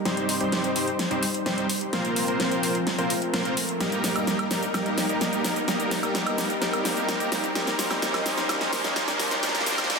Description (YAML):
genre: EDM, festival progressive house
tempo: 128 BPM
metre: 4/4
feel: straight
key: Eb major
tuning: A4 = 440 Hz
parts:
  - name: lush unison pad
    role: sustained chords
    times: 0.0-10.0 s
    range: F3 to C5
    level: -31 LUFS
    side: equal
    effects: chorus
  - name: riser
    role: sound effects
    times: 0.8-10.0 s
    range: none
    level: -34 LUFS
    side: right 2 dB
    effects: none
  - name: dense compressed supersaw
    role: riff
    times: 0.1-10.0 s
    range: G3 to C5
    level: -27 LUFS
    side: equal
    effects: cassette tape, low-pass filter, dub echo
  - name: big-room dance drum kit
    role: drums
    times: 0.1-10.0 s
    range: hi-hat, shaker, snare drum, woodblock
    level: -27 LUFS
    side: equal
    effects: none
room: wet lush hall reverb, RT60 2.0 s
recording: dense, heavily limited modern master, high-pass filter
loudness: -23 LUFS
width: side -4 dB against mid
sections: 0.0-10.0 A section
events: build-up 0.0-10.0; drum fill 0.0-10.0; filter sweep on supersaw synth 0.0-10.0; filter sweep on analog synth pad 0.0-10.0; riser 0.8-10.0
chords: 0.1 Cm; 1.9 Bbsus2; 3.8 Eb; 7.6 Cm; 9.4 Bbsus2